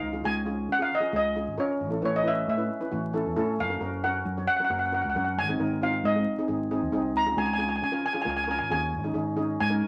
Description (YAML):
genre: calypso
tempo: 135 BPM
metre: 4/4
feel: straight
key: Db major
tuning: A4 = 444 Hz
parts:
  - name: steel pan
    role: melody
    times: 0.0-9.9 s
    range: Db5 to Bb5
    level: -30 LUFS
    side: equal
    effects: none
  - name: fingered electric bass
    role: bass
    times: 0.0-9.8 s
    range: Gb1 to Db3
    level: -34 LUFS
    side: equal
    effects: none
  - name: steel pan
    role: accompaniment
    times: 0.1-9.8 s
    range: C4 to Db5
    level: -33 LUFS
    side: equal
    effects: none
room: wet studio reverb, RT60 0.7 s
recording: vinyl crackle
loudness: -27 LUFS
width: mono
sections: 0.0-9.9 A section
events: none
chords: 0.0 Dbadd9; 1.8 Aadd9; 3.6 Gbmaj7; 5.4 Ab; 7.2 Dbadd9; 8.9 Absus4